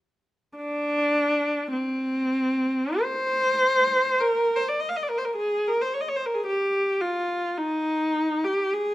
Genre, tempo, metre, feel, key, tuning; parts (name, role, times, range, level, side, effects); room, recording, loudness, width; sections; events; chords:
classical, free, expressive piece for unaccompanied viola; 35-55 BPM; 4/4; rubato; A4 = 440 Hz
rich viola; solo; 0.6-8.9 s; C4 to F5; -22 LUFS; equal
light reverb; close, detailed microphones; -22 LUFS; side -16 dB against mid
0.6-8.9 A section